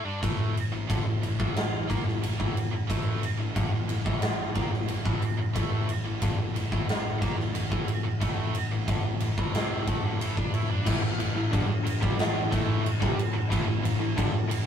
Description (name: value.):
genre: hard rock.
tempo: 90 BPM.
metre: 4/4.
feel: straight.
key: A minor.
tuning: A4 = 440 Hz.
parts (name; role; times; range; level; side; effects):
heavy high-gain guitar; riff; 0.0-14.5 s; G2 to E4; -36 LUFS; right 7 dB; distortion.
tight distorted guitar; riff; 0.0-14.5 s; G2 to E4; -37 LUFS; left 4 dB; distortion.
fingered electric bass; bass; 0.0-14.5 s; G1 to A2; -38 LUFS; equal; none.
huge arena drum kit; drums; 0.2-14.7 s; crash cymbal, kick drum, ride cymbal, snare drum; -26 LUFS; equal; none.
overdriven electric guitar; riff; 10.9-14.5 s; G2 to A3; -33 LUFS; equal; none.
room: light reverb.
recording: rough rehearsal-room recording.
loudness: -25 LUFS.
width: side -8 dB against mid.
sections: 0.0-10.9 A section; 10.9-14.7 B section.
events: none.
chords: 0.0 Am.